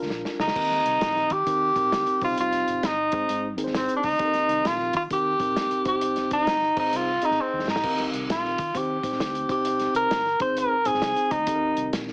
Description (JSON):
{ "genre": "uptempo 1960s-style soul", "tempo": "132 BPM", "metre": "4/4", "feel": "swing 65% on 8ths", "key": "Eb major", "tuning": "A4 = 439 Hz", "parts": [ { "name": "warm tenor saxophone", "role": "melody", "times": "0.0-11.9 s", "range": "C4 to C5", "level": "-22 LUFS", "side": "equal", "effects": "none" }, { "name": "mellow tine electric piano", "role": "accompaniment", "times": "0.0-12.1 s", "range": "Ab2 to Eb5", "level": "-30 LUFS", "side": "equal", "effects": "none" }, { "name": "vintage muted fingered electric bass", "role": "bass", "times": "0.0-12.1 s", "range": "G1 to Eb3", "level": "-40 LUFS", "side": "equal", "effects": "none" }, { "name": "warm soul drum kit", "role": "drums", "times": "0.0-12.1 s", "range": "crash cymbal, hi-hat, kick drum, snare drum", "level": "-32 LUFS", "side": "equal", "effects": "none" } ], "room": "moderate small room ambience, RT60 0.5 s", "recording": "heavily compressed radio sound, multiband compression, small speaker sound", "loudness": "-22 LUFS", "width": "side -28 dB against mid", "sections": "0.6-12.1 A section", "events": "drum fill 0.1-0.6, 7.4-7.8", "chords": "0.0 Bb; 0.6 Eb6; 2.1 Cm; 3.1 Ab; 4.2 Eb6; 5.8 Cm; 6.7 Ab; 7.8 Eb6; 9.4 Cm; 10.3 Ab; 11.5 Eb6", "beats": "0.10 | 0.55 1.01 1.47 1.92 | 2.38 2.83 3.29 3.74 | 4.20 4.65 5.11 5.56 | 6.02 6.47 6.93 7.38 | 7.83 8.29 8.74 9.20 | 9.65 10.11 10.56 11.02 | 11.47 11.92" }